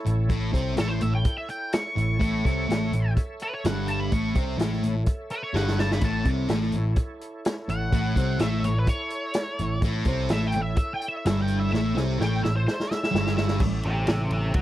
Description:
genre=blues rock power trio and southern rock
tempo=126 BPM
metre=4/4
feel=straight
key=A major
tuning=A4 = 441 Hz
part: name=overdriven tonewheel organ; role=sustained chords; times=0.0-14.6 s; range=C#4 to E5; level=-38 LUFS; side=right 2 dB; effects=slow rotary speaker, chorus vibrato
part: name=thick fuzz guitar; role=riff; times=0.1-13.6 s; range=G2 to C4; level=-26 LUFS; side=equal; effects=distortion
part: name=vintage muted picked electric bass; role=bass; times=0.1-14.6 s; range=G1 to C#2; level=-27 LUFS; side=equal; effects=none
part: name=vintage drum kit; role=drums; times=0.1-14.6 s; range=crash cymbal, hi-hat, kick drum, ride cymbal, snare drum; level=-26 LUFS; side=equal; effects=none
part: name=octave-fuzz lead guitar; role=melody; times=0.8-14.6 s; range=A4 to C#6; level=-30 LUFS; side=equal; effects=wah, distortion
room=little or no reverb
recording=dry, close 1970s-style studio recording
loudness=-23 LUFS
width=side -14 dB against mid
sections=0.0-13.6 A section; 13.6-14.6 B section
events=drum fill 5.5-6.0, 11.7-13.6; lead electric guitar solo 13.6-14.6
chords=0.0 A

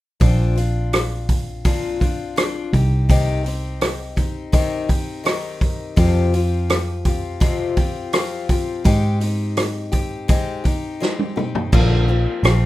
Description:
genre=folk rock and heartland rock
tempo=83 BPM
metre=4/4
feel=straight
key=unclear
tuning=A4 = 440 Hz
part: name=picked steel-string acoustic guitar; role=accompaniment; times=0.2-12.7 s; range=F2 to G4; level=-25 LUFS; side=left 5 dB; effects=none
part: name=vintage muted picked electric bass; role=bass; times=0.2-12.7 s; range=Bb1 to Ab2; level=-19 LUFS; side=equal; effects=none
part: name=vintage drum kit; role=drums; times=0.2-12.6 s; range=crash cymbal, hi-hat, kick drum, rim click, snare drum, toms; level=-19 LUFS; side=equal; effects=none
room=little or no reverb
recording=rough home demo mix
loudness=-17 LUFS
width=side -16 dB against mid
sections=0.2-11.7 A section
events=drum fill 11.0-11.7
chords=0.2 Bbadd9; 2.7 Cm; 6.0 Fsus2; 8.9 Abmaj7; 11.7 Bbadd9

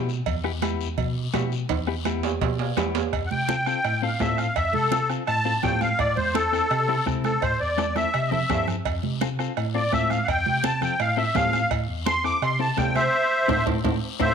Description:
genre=latin, cumbia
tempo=168 BPM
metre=4/4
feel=straight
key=A minor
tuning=A4 = 440 Hz
part: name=clean electric guitar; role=accompaniment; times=0.0-14.3 s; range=B3 to A4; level=-30 LUFS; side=left 11 dB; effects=none
part: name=mellow tine electric piano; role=bass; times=0.0-14.3 s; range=E2 to C3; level=-28 LUFS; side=equal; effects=medium stereo tremolo
part: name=guiro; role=percussion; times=0.1-14.3 s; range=none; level=-39 LUFS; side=left 13 dB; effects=none
part: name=bombo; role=percussion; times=0.3-14.3 s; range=none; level=-32 LUFS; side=left 1 dB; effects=none
part: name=congas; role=percussion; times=0.3-14.3 s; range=none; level=-32 LUFS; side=right 12 dB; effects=none
part: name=cowbell and timbales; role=percussion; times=0.3-14.3 s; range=none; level=-31 LUFS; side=right 13 dB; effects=none
part: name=musette accordion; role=melody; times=3.3-14.3 s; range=A4 to D6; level=-23 LUFS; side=equal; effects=slapback echo
part: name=clear trombone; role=second line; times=14.2-14.3 s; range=A2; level=-30 LUFS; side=left 13 dB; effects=none
room=moderate echo chamber reverb, RT60 1.4 s, studio ambience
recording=1960s-style stereo with parts hard left and right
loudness=-21 LUFS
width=side -7 dB against mid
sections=0.0-3.1 A section; 3.1-14.3 B section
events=drum fill 1.7-3.1, 7.8-8.9; accordion solo 3.1-14.3; band accent 13.1-14.3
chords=0.0 Em; 3.1 F; 6.0 Am; 8.9 F; 11.7 Am

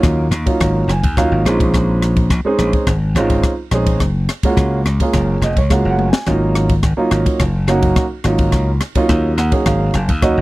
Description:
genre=electric jazz fusion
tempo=106 BPM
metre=4/4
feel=straight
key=Ab mixolydian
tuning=A4 = 438 Hz
part: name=warm grand piano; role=accompaniment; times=0.0-10.4 s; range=Gb3 to Ab5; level=-18 LUFS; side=right 2 dB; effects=none
part: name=slap bass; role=bass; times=0.0-10.4 s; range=F1 to Eb2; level=-16 LUFS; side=equal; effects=none
part: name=crisp fusion drum kit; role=drums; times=0.0-10.4 s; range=kick drum, ride cymbal, rim click, snare drum, toms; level=-18 LUFS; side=left 1 dB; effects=none
room=little or no reverb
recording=dry, close 1970s-style studio recording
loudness=-13 LUFS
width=side -19 dB against mid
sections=0.0-10.4 A section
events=grand piano fill 0.6-1.7, 5.1-6.3, 9.1-10.4; drum fill 6.0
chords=0.0 Ab13sus4; 1.5 Bbm11; 4.0 Gbmaj9; 6.3 Ab13sus4

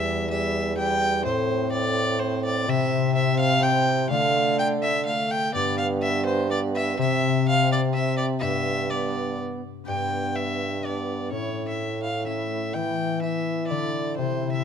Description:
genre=classical, renaissance-style consort dance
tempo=126 BPM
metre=3/4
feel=straight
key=G mixolydian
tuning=A4 = 441 Hz
part: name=rich violin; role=melody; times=0.0-14.6 s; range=C5 to G5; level=-26 LUFS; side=equal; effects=none
part: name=concert harp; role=accompaniment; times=0.0-14.6 s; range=E2 to A4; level=-28 LUFS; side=left 11 dB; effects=none
part: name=warm trombone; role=accompaniment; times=0.0-14.6 s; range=G3 to E4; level=-31 LUFS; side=right 2 dB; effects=none
part: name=mellow bassoon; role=bass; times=0.0-14.6 s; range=E2 to E3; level=-28 LUFS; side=right 4 dB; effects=none
room=light reverb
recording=close, detailed microphones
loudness=-22 LUFS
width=side -7 dB against mid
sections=0.0-9.9 A section; 9.9-14.6 B section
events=none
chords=0.0 Em; 1.3 Am; 2.7 C; 4.1 Dm; 5.5 G; 7.0 C; 8.4 G; 11.3 A; 12.8 Em

